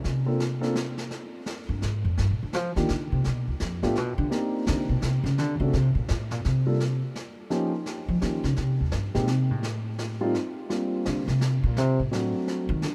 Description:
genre	jazz piano trio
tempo	169 BPM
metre	3/4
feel	swing 64% on 8ths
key	unclear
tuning	A4 = 439 Hz
part	upright bass	bass	0.0-12.9 s	D2 to F3	-27 LUFS	equal	none
part	brushed snare drum and snare drum	drums	0.0-12.9 s	none	-39 LUFS	equal	none
part	dark baby grand piano	melody	0.3-0.7, 2.8-12.6 s	F3 to A4	-32 LUFS	equal	none
room	moderate cathedral reverb, RT60 6.0 s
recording	in a vast, echoing space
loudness	-27 LUFS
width	mono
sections	0.0-6.4 A section; 6.4-12.9 A section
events	upright bass solo 0.0-12.9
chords	0.0 Bbmaj7; 1.1 Fmadd9; 2.2 Ebmaj7; 3.2 G7 (rootless); 4.3 Cm9; 5.4 D7(no3); 6.4 N.C.; 7.5 Eb7; 8.6 Abmaj7 (rootless); 9.6 N.C.; 10.7 Bb6; 11.8 D7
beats	| 0.03 0.39 0.75 | 1.10 1.46 1.82 | 2.17 2.53 2.88 | 3.24 3.60 3.95 | 4.31 4.66 5.02 | 5.37 5.73 6.08 | 6.44 6.79 7.15 | 7.50 7.86 8.21 | 8.57 8.92 9.28 | 9.63 9.98 10.34 | 10.69 11.05 11.40 | 11.76 12.11 12.46 | 12.82

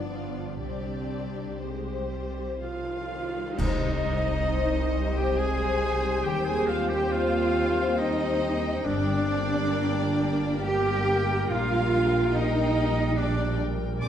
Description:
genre	classical, slow romantic movement for symphony orchestra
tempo	58-72 BPM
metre	3/4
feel	rubato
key	C minor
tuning	A4 = 442 Hz
part	rich chamber violin section	melody	0.0-14.1 s	C5 to Ab5	-42 LUFS	left 5 dB	none
part	clear chamber violin section	second line	0.0-14.1 s	C4 to D6	-37 LUFS	left 3 dB	none
part	rich chamber viola section	accompaniment	0.0-14.1 s	Eb3 to C5	-37 LUFS	right 2 dB	none
part	concert harp	arpeggios	0.0-14.1 s	G2 to G5	-33 LUFS	left 6 dB	none
part	dark chamber cello section	bass	0.0-14.1 s	D4 to D5	-29 LUFS	right 2 dB	none
part	rich chamber double bass section	bass	0.0-14.1 s	G1 to Eb2	-30 LUFS	right 3 dB	none
part	cymbal swell, clash cymbals and concert bass drum	percussion	0.6-5.3 s	none	-35 LUFS	equal	none
part	clear oboe	second line	2.6-14.1 s	D4 to D5	-35 LUFS	right 2 dB	none
part	hollow concert flute	second line	2.6-14.1 s	D5 to D6	-35 LUFS	left 1 dB	none
part	dark French horn section	sustained chords	3.6-14.1 s	Bb3 to Ab4	-33 LUFS	left 6 dB	none
room	moderate scoring stage reverb, RT60 1.6 s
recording	dark, warm production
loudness	-24 LUFS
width	side -9 dB against mid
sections	0.0-3.6 A section; 3.6-14.1 A section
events	band accent 3.6-4.5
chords	0.0 G7; 0.6 Cm; 6.3 Cm/Eb; 8.9 Gm; 11.5 Gm/Bb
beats	| 0.61 1.62 2.61 | 3.59 4.49 5.38 | 6.26 7.11 7.99 | 8.86 9.72 10.64 | 11.51 12.35 13.18 | 14.02

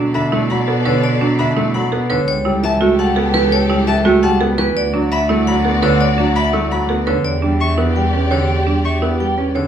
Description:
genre	classical, minimalist pattern music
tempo	338 BPM (eighths)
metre	7/8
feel	straight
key	B minor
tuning	A4 = 436 Hz
part	vibraphone with hard mallets	melody	0.0-9.7 s	B4 to G5	-23 LUFS	left 4 dB	none
part	clear grand piano	accompaniment	0.0-9.7 s	D3 to C#4	-20 LUFS	left 1 dB	none
part	rich studio string section	sustained chords	0.0-9.5 s	F#4 to D5	-24 LUFS	left 3 dB	none
part	buzzing marimba with hard mallets	arpeggios	0.0-9.7 s	D4 to C#5	-20 LUFS	right 5 dB	none
part	warm cello	bass	0.0-9.6 s	C#2 to B2	-18 LUFS	right 2 dB	none
part	rich violin	arpeggios	0.1-9.0 s	A5 to C#6	-24 LUFS	left 4 dB	none
room	light reverb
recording	small room reverb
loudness	-13 LUFS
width	side -9 dB against mid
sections	0.0-9.7 A section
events	none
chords	0.0 Bm11; 2.3 A9/C#; 4.8 Dadd9; 7.2 Em7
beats	0.15 0.32 0.50 0.68 0.86 | 1.03 1.21 1.39 1.57 1.74 1.92 2.10 | 2.28 2.45 2.63 2.81 2.99 3.16 3.34 | 3.52 3.70 3.87 4.05 4.23 4.41 4.58 | 4.76 4.94 5.12 5.29 5.47 5.65 5.83 | 6.00 6.18 6.36 6.54 6.71 6.89 7.07 | 7.25 7.42 7.60 7.78 7.96 8.13 8.31 | 8.49 8.67 8.84 9.02 9.20 9.38 9.55

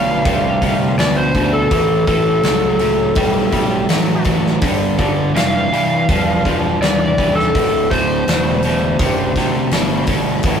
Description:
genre	blues rock power trio and southern rock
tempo	82 BPM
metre	4/4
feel	straight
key	unclear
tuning	A4 = 435 Hz
part	overdriven slide guitar	melody	0.0-10.0 s	A4 to F5	-18 LUFS	equal	none
part	crunchy overdriven guitar	riff	0.0-10.6 s	D2 to G3	-17 LUFS	equal	none
part	fuzz picked electric bass	bass	0.0-10.6 s	D1 to D2	-22 LUFS	equal	overdrive
part	big rock drum kit	drums	0.3-10.6 s	hi-hat, kick drum, snare drum	-20 LUFS	equal	none
room	moderate studio reverb, RT60 0.6 s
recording	rough rehearsal-room recording, warm saturation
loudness	-13 LUFS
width	side -7 dB against mid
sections	0.0-10.6 A section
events	none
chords	0.0 D5; 1.7 A7; 4.6 G5; 7.5 D7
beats	0.25 0.98 | 1.71 2.44 3.17 3.90 | 4.62 5.35 6.08 6.81 | 7.54 8.26 8.99 9.72 | 10.44

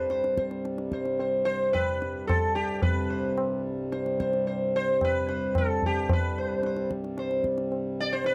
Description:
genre	indian classical, Hindustani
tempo	110 BPM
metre	3/4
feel	straight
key	unclear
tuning	A4 = 442 Hz
part	sitar	melody	0.0-8.3 s	G4 to D5	-30 LUFS	equal	none
part	pedal harmonium	drone	0.0-8.3 s	C2 to G2	-35 LUFS	equal	none
part	tabla	percussion	0.1-8.3 s	none	-32 LUFS	equal	none
room	light reverb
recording	dry, close 1970s-style studio recording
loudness	-28 LUFS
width	mono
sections	0.0-8.3 A section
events	none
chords	none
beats	0.10 0.65 | 1.20 1.75 2.29 | 2.84 3.38 3.93 | 4.47 5.01 5.55 | 6.09 6.63 7.17 | 7.71 8.25

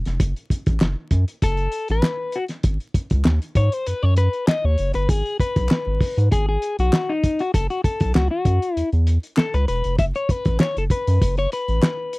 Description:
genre	funk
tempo	98 BPM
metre	4/4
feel	straight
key	F# dorian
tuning	A4 = 440 Hz
part	round analog bass	bass	0.0-11.8 s	E1 to G#2	-19 LUFS	equal	none
part	cloth-damped thuddy drum kit	drums	0.1-12.2 s	hi-hat, kick drum, snare drum	-19 LUFS	equal	none
part	group handclap	percussion	0.8-12.0 s	none	-33 LUFS	left 3 dB	none
part	electric guitar at the edge of break-up	accompaniment	1.4-12.2 s	D#4 to E5	-24 LUFS	left 3 dB	none
room	little or no reverb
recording	dry, close 1970s-style studio recording, vinyl crackle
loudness	-18 LUFS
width	side -23 dB against mid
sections	0.0-12.2 A section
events	clean electric guitar solo 0.0-12.2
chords	0.0 F#m; 2.6 G#m7; 7.5 F#m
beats	| 0.20 0.81 1.42 2.04 | 2.65 3.26 3.87 4.49 | 5.10 5.71 6.32 6.93 | 7.54 8.15 8.77 9.38 | 9.99 10.60 11.21 11.82

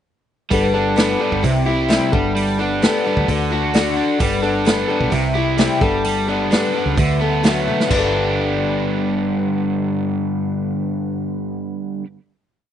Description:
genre	folk rock and heartland rock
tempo	130 BPM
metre	4/4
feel	straight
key	G major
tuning	A4 = 440 Hz
part	picked old ladder-braced acoustic guitar	accompaniment	0.5-12.1 s	C3 to A4	-20 LUFS	left 5 dB	slapback echo
part	crunchy overdriven guitar	riff	0.5-12.1 s	G2 to G4	-20 LUFS	right 2 dB	slapback echo
part	fingered electric bass	bass	0.5-12.0 s	G1 to D2	-24 LUFS	right 2 dB	none
part	natural country drum kit	drums	0.5-8.0 s	china cymbal, hi-hat, kick drum, snare drum, toms	-20 LUFS	right 1 dB	none
room	little or no reverb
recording	recorded outdoors, with no room sound, nothing above 10.5 kHz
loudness	-16 LUFS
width	side -9 dB against mid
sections	0.5-7.9 verse; 7.9-11.6 final chord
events	drum fill 7.7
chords	0.5 Gadd9; 1.4 C; 2.1 Gadd9; 3.3 D; 4.2 Gadd9; 5.1 C; 5.8 Gadd9; 7.0 D6; 7.9 Gadd9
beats	| 0.51 0.97 1.43 1.89 | 2.35 2.82 3.28 3.74 | 4.20 4.66 5.12 5.58 | 6.04 6.51 6.97 7.44 | 7.90 8.37 8.83 9.30 | 9.77 10.24 10.70 11.17

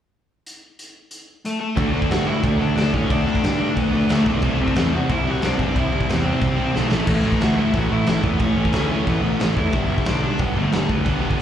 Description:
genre	punk rock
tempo	181 BPM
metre	4/4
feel	straight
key	unclear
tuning	A4 = 440 Hz
part	raw garage drum kit	drums	0.5-11.4 s	crash cymbal, hi-hat, kick drum, snare drum	-24 LUFS	equal	none
part	dark smooth lead guitar	melody	1.5-11.4 s	A3 to F#5	-27 LUFS	left 2 dB	overdrive, digital delay
part	crunchy overdriven guitar	riff	1.8-11.4 s	G2 to D4	-26 LUFS	left 10 dB	slapback echo
part	scooped high-gain guitar	riff	1.8-11.4 s	G2 to F#4	-30 LUFS	equal	distortion, slapback echo
part	sludgy distorted guitar	riff	1.8-11.4 s	G2 to D4	-24 LUFS	right 8 dB	overdrive
part	fuzz picked electric bass	bass	1.8-11.4 s	G1 to A2	-23 LUFS	equal	overdrive
room	little or no reverb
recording	live gig heard through the venue's PA, club reverb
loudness	-18 LUFS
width	side -10 dB against mid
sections	0.5-1.8 A section; 1.8-11.4 B section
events	drum fill 6.7-7.1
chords	0.5 N.C.; 1.8 D; 4.4 C; 6.9 A; 9.7 G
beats	| 0.46 0.79 1.12 1.45 | 1.78 2.11 2.44 2.77 | 3.10 3.44 3.77 4.10 | 4.43 4.76 5.09 5.42 | 5.75 6.08 6.42 6.75 | 7.08 7.41 7.74 8.07 | 8.40 8.73 9.07 9.40 | 9.73 10.06 10.39 10.72 | 11.05 11.39

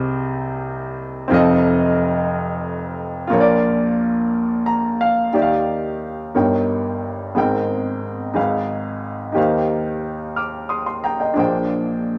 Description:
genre	gospel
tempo	60 BPM (dotted quarters)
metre	6/8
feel	straight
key	Eb major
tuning	A4 = 440 Hz
part	clear grand piano	solo	0.0-12.2 s	F1 to F6	-20 LUFS	equal	none
room	moderate studio reverb, RT60 0.9 s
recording	none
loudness	-20 LUFS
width	mono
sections	0.0-5.3 A section; 5.3-12.2 B section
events	grand piano fill 4.3-5.3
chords	0.0 Ab/C; 1.3 F7; 3.3 Bb; 5.3 Ebmaj9; 6.3 Eb7/G; 7.4 Abmaj9; 8.4 Abm6; 9.4 Eb69; 11.4 Bb13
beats	0.31 | 1.31 2.32 | 3.32 4.33 | 5.34 6.34 | 7.35 8.36 | 9.37 10.38 | 11.39

